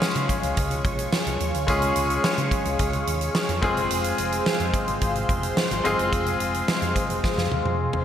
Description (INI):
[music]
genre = 1980s-style pop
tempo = 108 BPM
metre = 4/4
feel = straight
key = unclear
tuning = A4 = 439 Hz
[part]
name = bright grand piano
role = accompaniment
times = 0.0-8.0 s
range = Ab3 to Ab4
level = -26 LUFS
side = left 2 dB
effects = none
[part]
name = phased analog pad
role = sustained chords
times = 0.0-8.0 s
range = Ab4 to Db6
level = -28 LUFS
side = right 1 dB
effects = phaser, chorus
[part]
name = fingered electric bass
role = bass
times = 0.0-8.0 s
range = F1 to Db3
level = -29 LUFS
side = equal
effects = none
[part]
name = huge arena drum kit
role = drums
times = 0.0-8.0 s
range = hi-hat, kick drum, snare drum, toms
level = -26 LUFS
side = right 1 dB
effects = none
[sound]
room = wet lush hall reverb, RT60 1.8 s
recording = bright 1980s-style digital production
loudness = -21 LUFS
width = side -9 dB against mid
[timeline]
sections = 0.0-8.0 A section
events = drum fill 7.2-8.0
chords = 0.0 Db; 3.6 Fm